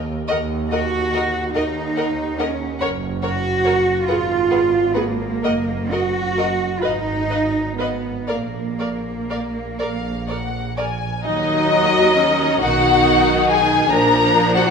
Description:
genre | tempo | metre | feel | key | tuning
classical, slow romantic movement for string orchestra | 39-48 BPM (dotted quarters) | 6/8 | rubato | Eb minor | A4 = 441 Hz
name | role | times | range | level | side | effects
clear chamber double bass section | bass | 0.0-14.7 s | Gb1 to Eb2 | -26 LUFS | right 3 dB | none
rich chamber violin section | melody | 0.3-14.7 s | Eb5 to Bb5 | -21 LUFS | left 3 dB | none
rich chamber violin section | second line | 0.3-14.7 s | Eb4 to Eb5 | -23 LUFS | left 4 dB | none
rich chamber viola section | accompaniment | 0.3-14.7 s | Eb3 to Cb5 | -23 LUFS | right 2 dB | none
rich chamber cello section | bass | 0.7-14.7 s | Bb2 to Gb4 | -22 LUFS | right 3 dB | none
room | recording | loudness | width
wet scoring stage reverb, RT60 2.0 s | minimal, uncompressed stereo recording | -17 LUFS | side -6 dB against mid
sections
0.0-11.2 A section; 11.2-14.7 B section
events
none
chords
0.3 Ebm; 2.8 Gb; 4.1 N.C.; 5.4 Ebm/Gb (rootless); 6.8 Fm7b5/Ab (rootless); 8.3 Bb5; 11.2 Ebm; 13.9 Bb

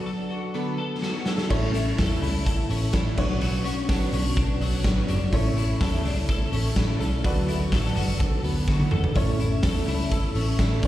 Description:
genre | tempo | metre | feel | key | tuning
jangly indie pop | 125 BPM | 4/4 | straight | A major | A4 = 441 Hz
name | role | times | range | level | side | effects
picked plugged-in twelve-string acoustic guitar | accompaniment | 0.0-10.9 s | A2 to C#5 | -33 LUFS | right 6 dB | lush chorus, plate reverb, slapback echo
warm upright piano | accompaniment | 0.0-10.9 s | D4 to D5 | -36 LUFS | equal | plate reverb, slapback echo
twelve-string electric guitar | arpeggios | 0.0-10.9 s | F#3 to A4 | -29 LUFS | left 4 dB | ensemble chorus, tape echo, slapback echo
raw garage drum kit | drums | 1.0-10.9 s | crash cymbal, hi-hat, kick drum, snare drum, toms | -25 LUFS | equal | none
vintage muted picked electric bass | bass | 1.5-10.9 s | F#1 to E2 | -26 LUFS | equal | none
room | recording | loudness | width
light reverb | live gig heard through the venue's PA, recital hall reverb | -22 LUFS | side -14 dB against mid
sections
0.0-1.5 A section; 1.5-10.9 B section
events
break 0.0-1.5; drum fill 1.0-1.5, 8.7-9.2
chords
0.0 D6; 1.5 A; 3.2 Bmadd9; 5.3 A; 7.2 D6; 9.2 A

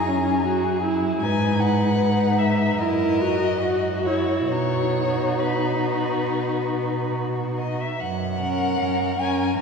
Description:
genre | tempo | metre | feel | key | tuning
classical, slow romantic movement for string quartet | 67-80 BPM | 4/4 | rubato | B major | A4 = 440 Hz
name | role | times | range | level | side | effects
rich violin | melody | 0.0-9.6 s | B4 to A#5 | -27 LUFS | left 3 dB | none
rich violin | second line | 0.0-9.6 s | F#4 to B4 | -28 LUFS | left 5 dB | none
warm viola | accompaniment | 0.0-9.6 s | C#4 to F#4 | -25 LUFS | right 1 dB | none
rich cello | bass | 0.0-9.6 s | F#2 to B2 | -25 LUFS | right 2 dB | none
room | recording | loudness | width
wet cathedral reverb, RT60 4.1 s | recorded in a church or concert hall, studio ambience | -20 LUFS | side -5 dB against mid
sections
0.0-8.0 A section; 8.0-9.6 B section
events
none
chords
0.0 F#7; 1.2 G#m; 2.8 F#6; 4.5 B; 8.0 F#

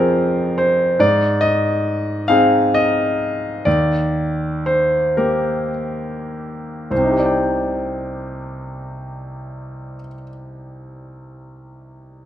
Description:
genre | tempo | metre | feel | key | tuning
classical | 33-49 BPM (dotted quarters) | 6/8 | rubato | C minor | A4 = 440 Hz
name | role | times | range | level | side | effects
bright concert grand piano | accompaniment | 0.0-12.3 s | C2 to G5 | -17 LUFS | equal | none
room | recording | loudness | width
moderate recital hall reverb, RT60 1.6 s | minimal, uncompressed stereo recording | -16 LUFS | side -11 dB against mid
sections
0.0-6.9 A section; 6.9-10.4 B section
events
slowing down 0.0-6.9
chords
0.0 Fm; 1.0 Ab; 3.7 Eb; 6.9 Cmadd9

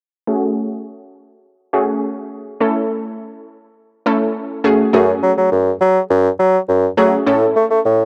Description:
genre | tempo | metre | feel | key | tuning
pop | 103 BPM | 4/4 | straight | unclear | A4 = 445 Hz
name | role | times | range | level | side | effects
unison pluck | accompaniment | 0.3-8.1 s | A3 to A4 | -19 LUFS | equal | low-pass filter, cassette tape
mellow bassoon | bass | 4.9-8.0 s | F#2 to A3 | -15 LUFS | equal | none
room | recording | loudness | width
light reverb, studio reverb | home recording on cassette | -16 LUFS | mono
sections
0.3-4.9 A section; 4.9-8.1 B section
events
filter sweep on synth pluck 0.3-4.9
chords
0.3 F#madd9; 2.6 A; 4.6 F#madd9; 7.3 A

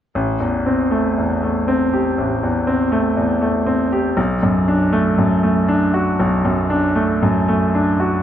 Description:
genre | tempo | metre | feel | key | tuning
classical | 60 BPM | 4/4 | rubato | A dorian | A4 = 440 Hz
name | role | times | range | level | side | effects
bright grand piano | accompaniment | 0.2-8.2 s | A1 to G4 | -15 LUFS | equal | none
room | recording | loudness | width
moderate scoring stage reverb, RT60 2.0 s | none | -15 LUFS | side -10 dB against mid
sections
0.1-8.2 A section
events
none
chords
0.1 Am7; 4.2 Bm7

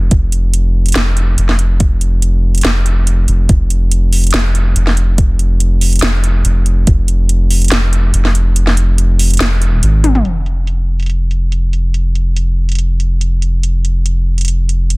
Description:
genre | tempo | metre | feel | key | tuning
deep dubstep | 142 BPM | 4/4 | half-time | F minor | A4 = 439 Hz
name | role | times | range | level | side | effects
soft dub sub bass | bass | 0.0-15.0 s | F1 to Ab1 | -12 LUFS | equal | none
electronic kick drum | drums | 0.1-7.0 s | none | -11 LUFS | equal | none
garage drum kit | drums | 0.1-15.0 s | hi-hat, snare drum, toms | -17 LUFS | equal | low-pass filter on hats, low-pass filter on snare, low-pass filter on toms
room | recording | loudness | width
little or no reverb | dense, heavily limited modern master | -11 LUFS | side -25 dB against mid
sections
0.0-10.3 A section; 10.3-15.0 B section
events
kick drops out 8.6-10.3; drum fill 10.0; filter sweep on drum 10.3-15.0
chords
none

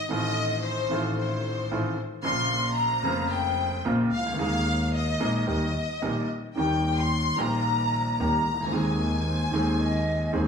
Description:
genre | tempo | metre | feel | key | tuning
tango | 112 BPM | 4/4 | rubato | unclear | A4 = 443 Hz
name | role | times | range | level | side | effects
rich studio violin section | second line | 0.0-10.5 s | C5 to C6 | -28 LUFS | left 3 dB | none
clear upright piano | accompaniment | 0.1-10.5 s | F1 to Ab4 | -28 LUFS | right 1 dB | none
rich double bass | bass | 0.1-10.5 s | F1 to Eb2 | -30 LUFS | left 1 dB | none
mellow concert flute | second line | 9.3-10.5 s | C5 to Eb5 | -32 LUFS | right 2 dB | none
room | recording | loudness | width
wet large studio reverb, RT60 1.5 s | small room ambience | -24 LUFS | side -6 dB against mid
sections
0.0-10.5 A section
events
violin section solo 0.0-10.5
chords
0.1 F7/A; 2.3 Bbm; 4.4 Ebsus4; 5.5 Eb; 8.7 Ab/Eb

